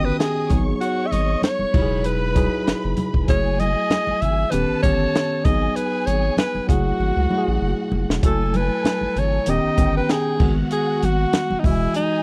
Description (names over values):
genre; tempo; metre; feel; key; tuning
lush 1970s-style soul; 97 BPM; 4/4; swing 54% on 16ths; F# dorian; A4 = 440 Hz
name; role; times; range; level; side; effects
clear alto saxophone; melody; 0.0-12.2 s; D#4 to E5; -26 LUFS; equal; none
warm studio string section; second line; 0.0-12.2 s; D#4 to D#6; -35 LUFS; equal; none
tine electric piano; accompaniment; 0.0-12.2 s; D#3 to G#5; -27 LUFS; equal; none
saturated sub bass; bass; 0.0-11.9 s; D#1 to C#2; -25 LUFS; equal; none
compact cocktail drum kit; drums; 0.2-12.1 s; crash cymbal, hi-hat, kick drum, snare drum; -24 LUFS; equal; none
congas; percussion; 0.5-12.1 s; none; -32 LUFS; equal; none
room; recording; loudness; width
little or no reverb; dry, close 1970s-style studio recording; -20 LUFS; mono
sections
0.0-8.2 A section; 8.2-12.2 A section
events
drum fill 7.0-8.2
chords
0.0 D#7alt; 0.5 G#m7; 1.7 Emaj9; 3.3 F#m9; 4.5 D#aug7; 5.5 G#m7; 6.7 F#m9; 9.5 D#aug7; 10.4 G#m7; 11.6 Emaj9